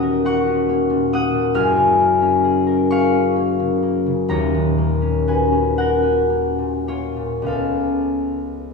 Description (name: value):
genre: classical, solo harp piece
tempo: 33-46 BPM (dotted quarters)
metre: 6/8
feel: rubato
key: unclear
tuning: A4 = 441 Hz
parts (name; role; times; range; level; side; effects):
- concert harp; solo; 0.0-8.7 s; D#1 to E#6; -16 LUFS; left 2 dB; none
room: wet concert hall reverb, RT60 2.3 s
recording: recorded in a church or concert hall, studio reverb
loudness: -16 LUFS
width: side -4 dB against mid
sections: 0.0-8.7 A section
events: none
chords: 0.0 D#m7; 1.6 F#maj9; 4.3 D#m7; 7.5 C#aug7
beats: 0.24 | 1.57 2.90 | 4.30 5.79 | 7.46